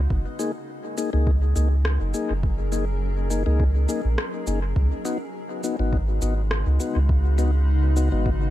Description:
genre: ambient dub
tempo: 103 BPM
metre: 4/4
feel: swing 54% on 16ths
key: unclear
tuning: A4 = 440 Hz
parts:
  - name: granular cloud pad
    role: sustained chords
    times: 0.0-8.5 s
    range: Db3 to Bb4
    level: -33 LUFS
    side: left 1 dB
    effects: built-in reverb
  - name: soft dub sub bass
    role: bass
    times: 0.0-8.5 s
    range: Gb1 to Db2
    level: -21 LUFS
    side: equal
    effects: none
  - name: electronic kick drum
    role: drums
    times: 0.1-8.4 s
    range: none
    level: -24 LUFS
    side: equal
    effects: overdrive
  - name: mellow tonewheel organ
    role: stabs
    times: 0.4-8.3 s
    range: Bb3 to Ab4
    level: -29 LUFS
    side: left 5 dB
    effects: slow rotary speaker, low-pass filter, dub echo
  - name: electronic cabasa and rim click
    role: drums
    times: 0.4-8.1 s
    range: none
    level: -33 LUFS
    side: equal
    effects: overdrive, dub echo
room: digital ambience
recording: dark, warm production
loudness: -20 LUFS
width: side -14 dB against mid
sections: 0.0-8.5 A section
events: fade-in on ambient pad 0.0-8.5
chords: 0.1 Gb69; 4.8 Db9sus4

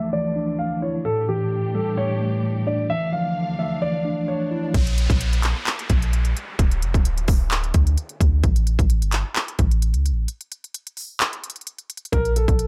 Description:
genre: hip hop, trap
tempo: 130 BPM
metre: 4/4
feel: half-time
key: D harmonic minor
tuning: A4 = 441 Hz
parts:
  - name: dark grand piano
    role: melody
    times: 0.0-4.7, 12.1-12.7 s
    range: G4 to F5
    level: -28 LUFS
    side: equal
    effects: low-pass filter
  - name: mellow tine electric piano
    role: accompaniment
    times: 0.0-4.8 s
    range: A2 to E4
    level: -26 LUFS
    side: equal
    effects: low-pass filter
  - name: muted studio string section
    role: sustained chords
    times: 0.0-4.7 s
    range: D2 to F5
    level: -35 LUFS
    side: equal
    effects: low-pass filter
  - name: swell and downlifter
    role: sound effects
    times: 3.9-8.4 s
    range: none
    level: -37 LUFS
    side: equal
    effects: none
  - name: warm 808-style bass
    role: bass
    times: 4.7-12.7 s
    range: D1 to D2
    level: -22 LUFS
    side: equal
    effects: none
  - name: trap drum kit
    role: drums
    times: 4.7-12.7 s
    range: handclaps, hi-hat, kick drum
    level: -24 LUFS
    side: equal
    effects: none
room: digital ambience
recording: none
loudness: -22 LUFS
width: mono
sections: 0.0-4.7 A section; 4.7-12.7 B section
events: filter sweep 0.0-4.7; swell 3.9-4.7; break 10.3-12.1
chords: 0.0 Dmadd9; 1.1 A7sus4; 2.9 Dmadd9; 4.7 N.C.; 12.1 Bbmaj7(no3)

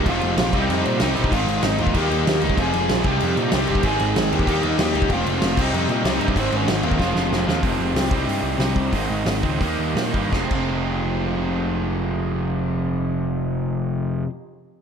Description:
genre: punk rock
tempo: 160-191 BPM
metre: 4/4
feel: straight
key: F minor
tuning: A4 = 444 Hz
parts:
  - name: cranked stack guitar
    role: riff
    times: 0.0-14.3 s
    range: F2 to Eb4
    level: -27 LUFS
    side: left 9 dB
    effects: overdrive, slapback echo
  - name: crunchy overdriven guitar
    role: riff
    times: 0.0-14.3 s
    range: F2 to F4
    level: -25 LUFS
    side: right 8 dB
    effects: slapback echo
  - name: distorted electric guitar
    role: riff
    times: 0.0-8.1 s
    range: F2 to Eb4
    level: -29 LUFS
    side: equal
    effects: distortion, slapback echo
  - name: fuzz picked electric bass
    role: bass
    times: 0.0-14.2 s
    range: F1 to Bb2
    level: -25 LUFS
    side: equal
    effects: overdrive
  - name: lead guitar through a small cranked amp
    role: melody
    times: 0.1-7.3 s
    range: C4 to Ab5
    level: -26 LUFS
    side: left 1 dB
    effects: overdrive, slapback echo, ping-pong delay
  - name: loose indie drum kit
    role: drums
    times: 0.1-10.6 s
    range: crash cymbal, hi-hat, kick drum, snare drum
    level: -24 LUFS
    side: equal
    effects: none
room: moderate lush hall reverb, RT60 1.7 s, small room reverb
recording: big arena sound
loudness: -19 LUFS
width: side -7 dB against mid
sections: 0.0-7.6 A section; 7.6-10.3 B section; 10.3-13.3 C section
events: drum fill 7.0-7.6; slowing down 7.6-10.3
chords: 0.1 Fm; 0.5 Cm; 1.3 Ab; 2.0 Eb; 2.6 Fm; 3.1 Cm; 3.8 Ab; 4.5 Eb; 5.1 Fm; 5.6 Cm; 6.4 Ab; 7.0 Fm; 8.1 Cm; 8.9 Ab; 9.6 Eb; 10.3 Fm

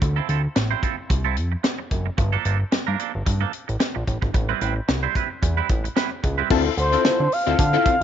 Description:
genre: early-eighties boogie funk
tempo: 111 BPM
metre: 4/4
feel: swing 56% on 16ths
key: D minor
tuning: A4 = 440 Hz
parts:
  - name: twangy electric guitar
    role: riff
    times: 0.0-6.5 s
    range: F3 to C5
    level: -27 LUFS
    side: right 14 dB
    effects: analog chorus
  - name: fat analog bass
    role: bass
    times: 0.0-8.0 s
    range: F#1 to D3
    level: -23 LUFS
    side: equal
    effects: none
  - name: tight funk drum kit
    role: drums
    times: 0.0-8.0 s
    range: crash cymbal, hi-hat, kick drum, snare drum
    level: -24 LUFS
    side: equal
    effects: none
  - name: funky polysynth comp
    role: accompaniment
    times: 6.5-8.0 s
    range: C4 to A4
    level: -22 LUFS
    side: left 13 dB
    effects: chorus
  - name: expressive synth lead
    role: melody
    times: 6.8-8.0 s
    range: C5 to F5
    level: -20 LUFS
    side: equal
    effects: chorus
room: light reverb, small room ambience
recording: 1960s-style stereo with parts hard left and right, nothing above 7.6 kHz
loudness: -20 LUFS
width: side -9 dB against mid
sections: 0.0-6.5 A section; 6.5-8.0 B section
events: none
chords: 0.0 Dm9; 2.2 Gm9; 4.1 Am9; 6.5 Dm9

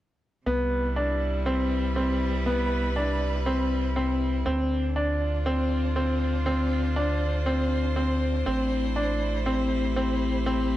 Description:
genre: electronica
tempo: 120 BPM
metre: 4/4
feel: straight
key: unclear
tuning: A4 = 440 Hz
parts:
  - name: rich string quartet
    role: sustained chords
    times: 0.5-10.8 s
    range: C3 to C5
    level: -32 LUFS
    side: right 1 dB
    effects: none
  - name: bright grand piano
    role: riff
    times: 0.5-10.8 s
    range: B3 to D4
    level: -26 LUFS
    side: left 1 dB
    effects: tape echo
  - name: round analog bass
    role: bass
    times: 0.5-10.8 s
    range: A1 to D2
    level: -28 LUFS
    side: equal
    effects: none
room: moderate echo chamber reverb, RT60 1.6 s, small room reverb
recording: dark, warm production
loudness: -24 LUFS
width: side -14 dB against mid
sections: 0.5-10.8 A section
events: none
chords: 0.5 Cmaj7; 4.5 Dm7; 8.5 Am7

